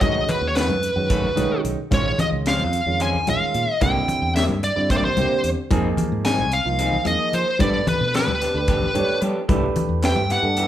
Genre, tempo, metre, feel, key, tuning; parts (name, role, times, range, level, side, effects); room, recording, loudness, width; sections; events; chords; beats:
electric jazz fusion; 222 BPM (eighths); 7/8; straight; A4 = 441 Hz
smooth overdriven lead guitar; melody; 0.0-10.7 s; B4 to Ab5; -22 LUFS; equal
dark baby grand piano; accompaniment; 0.0-10.7 s; D3 to Db5; -27 LUFS; right 4 dB
electric guitar through a small old amp; stabs; 0.0-10.7 s; D#3 to Ab4; -28 LUFS; equal
fingered electric bass; bass; 0.0-10.7 s; Bb1 to G3; -26 LUFS; equal
crisp fusion drum kit; drums; 0.0-10.7 s; hi-hat, kick drum, snare drum; -25 LUFS; equal
congas; percussion; 0.0-10.7 s; -27 LUFS; left 3 dB
moderate large studio reverb, RT60 0.9 s; band playing live in one room; -18 LUFS; side -11 dB against mid
0.0-10.7 A section
0.0 B9; 1.9 Bbm7; 3.8 C7b13; 5.7 Fm7; 7.6 G7; 9.5 Cmaj7
| 0.02 0.29 0.56 0.83 1.11 1.38 1.65 | 1.92 2.19 2.46 2.73 3.00 3.28 3.55 | 3.82 4.09 4.36 4.63 4.90 5.17 5.44 | 5.71 5.98 6.25 6.52 6.79 7.06 7.33 | 7.60 7.87 8.14 8.41 8.68 8.95 9.22 | 9.49 9.76 10.03 10.30 10.57